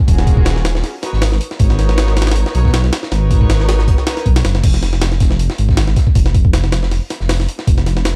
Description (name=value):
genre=drum and bass, jungle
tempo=158 BPM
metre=4/4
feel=swing 54% on 16ths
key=unclear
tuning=A4 = 440 Hz
part: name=warm studio string section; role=sustained chords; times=0.1-4.2 s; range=Bb3 to Db5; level=-26 LUFS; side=equal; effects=none
part: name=dark detuned saw bass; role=bass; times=0.1-8.2 s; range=Eb1 to Cb2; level=-17 LUFS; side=equal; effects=none
part: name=crunchy breakbeat drum kit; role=drums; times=0.1-8.2 s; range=hi-hat, snare drum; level=-35 LUFS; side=equal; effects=none
part: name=jungle sampler-style drum kit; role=drums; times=0.1-8.2 s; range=crash cymbal, hi-hat, kick drum, snare drum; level=-17 LUFS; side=equal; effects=small room ambience
room=small room reverb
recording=dark, warm production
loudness=-14 LUFS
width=mono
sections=0.0-4.6 A section; 4.6-8.2 A section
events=drop 0.0-4.6, 4.6-8.2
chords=0.0 Ebm11; 0.8 Abm11; 4.6 N.C.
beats=| 0.08 0.46 0.84 1.22 | 1.60 1.98 2.36 2.74 | 3.12 3.50 3.88 4.26 | 4.64 5.02 5.40 5.78 | 6.16 6.54 6.92 7.29 | 7.67 8.05